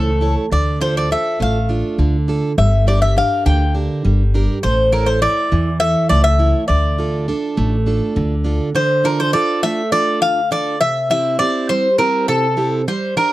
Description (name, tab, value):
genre	greek folk, Greek bouzouki band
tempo	204 BPM (eighths)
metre	7/8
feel	straight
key	D minor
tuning	A4 = 440 Hz
part	Greek bouzouki	melody	0.0-13.3 s	A4 to G5	-17 LUFS	left 1 dB	none
part	picked plugged-in steel-string acoustic guitar	accompaniment	0.0-13.3 s	C3 to E5	-20 LUFS	right 3 dB	none
part	upright bass	bass	0.0-8.6 s	G1 to E2	-17 LUFS	equal	none
room	light reverb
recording	dry, close 1970s-style studio recording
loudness	-14 LUFS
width	side -16 dB against mid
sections	0.0-8.8 A section; 8.8-13.3 A section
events	none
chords	0.0 A; 0.5 Dm; 2.6 Gm; 4.6 A; 6.7 Dm; 10.8 C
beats	0.21 | 0.51 0.80 1.10 1.39 1.69 1.98 2.28 | 2.57 2.87 3.16 3.46 3.75 4.04 4.34 | 4.63 4.93 5.22 5.52 5.81 6.11 6.40 | 6.69 6.99 7.28 7.58 7.87 8.17 8.46 | 8.75 9.05 9.34 9.64 9.93 10.23 10.52 | 10.81 11.11 11.40 11.70 11.99 12.29 12.58 | 12.88 13.17